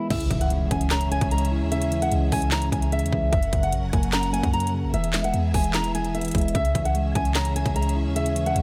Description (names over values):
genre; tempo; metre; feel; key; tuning
hip hop, trap; 149 BPM; 4/4; half-time; C# dorian; A4 = 440 Hz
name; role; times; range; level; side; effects
fingerpicked old ladder-braced acoustic guitar; melody; 0.0-8.6 s; E5 to A#5; -30 LUFS; equal; low-pass filter, delay
mellow tine electric piano; accompaniment; 0.0-8.6 s; F#2 to D#5; -30 LUFS; equal; lush chorus, low-pass filter
warm symphonic string section; sustained chords; 0.1-8.6 s; C#3 to F#5; -37 LUFS; equal; none
clean 808-style bass; bass; 0.1-8.6 s; E1 to F#2; -28 LUFS; equal; none
trap drum kit; drums; 0.1-8.6 s; crash cymbal, handclaps, hi-hat, kick drum, snare drum; -29 LUFS; equal; none
impact; sound effects; 0.1-1.7 s; none; -36 LUFS; equal; none
room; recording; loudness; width
little or no reverb; none; -23 LUFS; mono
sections
0.1-8.6 A section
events
impact 0.1-1.7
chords
0.1 C#m; 3.3 F#; 4.9 E; 6.5 C#m